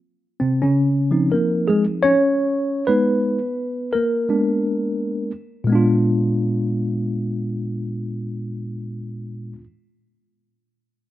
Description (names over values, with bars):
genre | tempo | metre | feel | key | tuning
hip hop | 85 BPM | 4/4 | swing 60% on 16ths | unclear | A4 = 441 Hz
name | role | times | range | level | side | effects
mellow tine electric piano | accompaniment | 0.4-9.6 s | Bb2 to Db5 | -18 LUFS | equal | medium stereo tremolo, plate reverb
room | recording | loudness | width
moderate studio reverb, RT60 0.6 s | rough home demo mix | -18 LUFS | side -14 dB against mid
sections
0.0-5.7 A section; 5.7-8.5 B section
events
tine electric piano solo 0.0-5.7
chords
0.1 Dbmaj9; 2.9 Abmadd9; 4.3 Bb7b9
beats
| 0.05 0.76 1.46 2.17 | 2.88 3.58 4.29 4.99 | 5.70 6.41 7.11 7.82